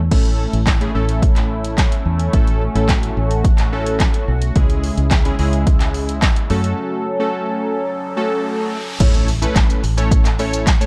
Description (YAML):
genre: dance-pop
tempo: 108 BPM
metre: 4/4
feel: straight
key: A major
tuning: A4 = 440 Hz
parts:
  - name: fingered electric bass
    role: bass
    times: 0.0-10.7 s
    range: A1 to F#2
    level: -22 LUFS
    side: equal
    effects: sidechain pumping
  - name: warm analog keys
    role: accompaniment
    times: 0.1-10.9 s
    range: G#3 to C#5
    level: -25 LUFS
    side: equal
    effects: chorus, sidechain pumping
  - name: sweeping resonant pad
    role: sustained chords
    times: 0.1-9.0 s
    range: C#3 to A4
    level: -28 LUFS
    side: equal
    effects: chorus, sidechain pumping
  - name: punchy analog drum machine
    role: drums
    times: 0.1-10.9 s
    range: crash cymbal, handclaps, hi-hat, kick drum, shaker, snare drum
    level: -18 LUFS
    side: equal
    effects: none
  - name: riser and impact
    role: sound effects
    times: 7.8-10.9 s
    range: none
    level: -32 LUFS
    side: equal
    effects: none
room: light reverb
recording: dark, warm production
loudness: -17 LUFS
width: mono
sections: 0.1-9.0 A section; 9.0-10.9 B section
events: break 6.8-9.0; riser 7.8-9.0; impact 9.0-10.9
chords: 0.1 A; 4.6 C#m; 6.5 F#m; 9.0 A